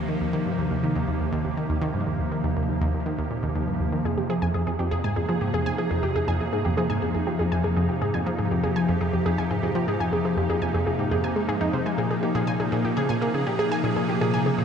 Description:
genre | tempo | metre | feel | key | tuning
ambient, sequencer-driven space music | 121 BPM | 4/4 | straight | unclear | A4 = 440 Hz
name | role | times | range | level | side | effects
evolving wavetable pad | sustained chords | 0.0-14.6 s | C3 to Ab4 | -26 LUFS | equal | ensemble chorus, built-in reverb
analog pluck | riff | 0.1-14.6 s | Eb2 to Bb3 | -26 LUFS | equal | chorus, tape echo
wide unison pluck | arpeggios | 4.1-14.6 s | Eb4 to Ab5 | -28 LUFS | equal | auto-pan, tape echo
room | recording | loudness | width
moderate plate reverb, RT60 3.3 s | dark, warm production | -22 LUFS | side -7 dB against mid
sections
0.0-14.6 A section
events
none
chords
0.0 Eb; 4.1 Fmadd9; 12.0 Bbm7

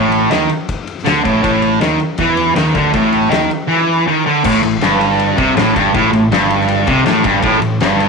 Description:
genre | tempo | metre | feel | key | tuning
garage rock duo or trio | 160 BPM | 4/4 | straight | unclear | A4 = 440 Hz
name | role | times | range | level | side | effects
fuzz guitar | riff | 0.0-8.1 s | G2 to E3 | -12 LUFS | right 1 dB | distortion
growling picked electric bass | bass | 0.0-8.1 s | G1 to E2 | -22 LUFS | right 1 dB | overdrive
oversized low-tuned drum kit | drums | 0.1-8.1 s | crash cymbal, kick drum, ride cymbal, snare drum | -20 LUFS | left 5 dB | none
room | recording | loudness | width
moderate plate reverb, RT60 1.2 s | 1960s-style stereo | -11 LUFS | side -4 dB against mid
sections
0.0-4.4 A section; 4.4-8.1 B section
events
none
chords
0.0 A5; 4.4 Gsus24

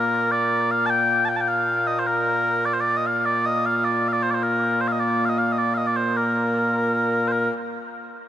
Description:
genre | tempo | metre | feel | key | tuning
scottish traditional | 103 BPM (dotted quarters) | 6/8 | straight | Bb major | A4 = 440 Hz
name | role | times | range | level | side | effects
mellow small bagpipes | solo | 0.0-7.5 s | Bb2 to A5 | -20 LUFS | equal | tape echo
room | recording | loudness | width
moderate huge ambient reverb, RT60 6.2 s | none | -19 LUFS | side -11 dB against mid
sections
0.0-7.3 A section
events
none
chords
none

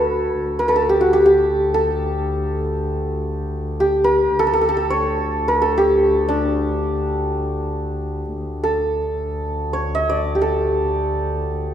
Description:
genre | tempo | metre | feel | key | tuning
Persian modal ensemble | free time | none | none | D dastgah chahargah | A4 = 440 Hz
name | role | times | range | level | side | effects
santur | melody | 0.0-11.7 s | D4 to Eb5+45c | -18 LUFS | equal | none
warm double bass | drone | 0.0-11.7 s | D2 | -25 LUFS | left 1 dB | none
room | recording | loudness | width
wet recital hall reverb, RT60 1.6 s | none | -17 LUFS | side -9 dB against mid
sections
0.0-8.4 A section; 8.4-11.7 A section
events
none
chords
none

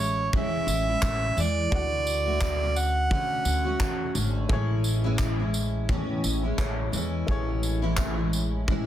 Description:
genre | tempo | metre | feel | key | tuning
acoustic pop | 86 BPM | 4/4 | swing 55% on 16ths | A major | A4 = 440 Hz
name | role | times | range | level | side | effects
warm harmonica | melody | 0.0-4.2 s | C#5 to F#5 | -27 LUFS | right 2 dB | none
picked steel-string acoustic guitar | accompaniment | 0.0-8.9 s | A2 to F#4 | -30 LUFS | left 1 dB | double-tracked left and right
warm upright piano | accompaniment | 0.0-8.9 s | A3 to C#6 | -39 LUFS | left 3 dB | none
upright bass | bass | 0.0-8.9 s | G#1 to D3 | -28 LUFS | equal | none
modern studio drum kit | drums | 0.3-8.9 s | handclaps, kick drum, tambourine | -30 LUFS | equal | none
tambourine | percussion | 1.0-8.2 s | none | -47 LUFS | left 6 dB | none
room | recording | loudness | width
light reverb | dense, heavily limited modern master | -24 LUFS | side -11 dB against mid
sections
0.0-8.9 A section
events
none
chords
0.0 Amaj7; 1.7 Dmaj7; 4.5 Amaj7

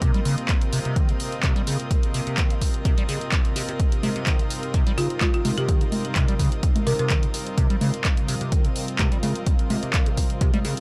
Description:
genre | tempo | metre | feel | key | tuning
acid house | 127 BPM | 4/4 | swing 53% on 16ths | C minor | A4 = 440 Hz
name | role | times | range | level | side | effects
string machine, full ensemble | sustained chords | 0.0-10.8 s | C3 to G4 | -36 LUFS | equal | ensemble chorus, sidechain pumping
liquid acid bass | riff | 0.0-10.8 s | C3 to G3 | -30 LUFS | equal | phaser, tube saturation, analog chorus, vintage 12-bit sampler grit, sidechain pumping, analog delay
electronic kick drum | drums | 0.0-10.5 s | none | -24 LUFS | equal | none
punchy analog drum machine | drums | 0.0-10.8 s | congas, handclaps, hi-hat | -30 LUFS | equal | none
rich chamber string section | texture | 0.0-10.8 s | C4 to Eb5 | -36 LUFS | equal | sidechain pumping
folk marimba with hard mallets | melody | 5.0-7.1 s | F4 to Bb4 | -32 LUFS | equal | analog delay
room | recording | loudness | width
little or no reverb | dry, gritty hardware recording | -23 LUFS | mono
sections
0.0-10.8 A section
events
none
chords
0.0 Cm7

